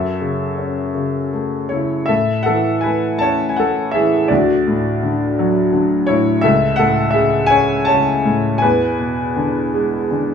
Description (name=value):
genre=classical, lyrical solo piano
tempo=54 BPM (dotted quarters)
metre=6/8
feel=rubato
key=A major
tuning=A4 = 440 Hz
part: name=clear baby grand piano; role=solo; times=0.0-10.3 s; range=C#2 to A5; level=-14 LUFS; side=left 1 dB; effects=none
room=light reverb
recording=studio reverb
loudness=-14 LUFS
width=side -7 dB against mid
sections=0.0-2.1 A section; 2.1-10.3 B section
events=none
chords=0.0 F#m7; 2.1 A; 4.3 D; 6.4 A/C#; 8.6 E7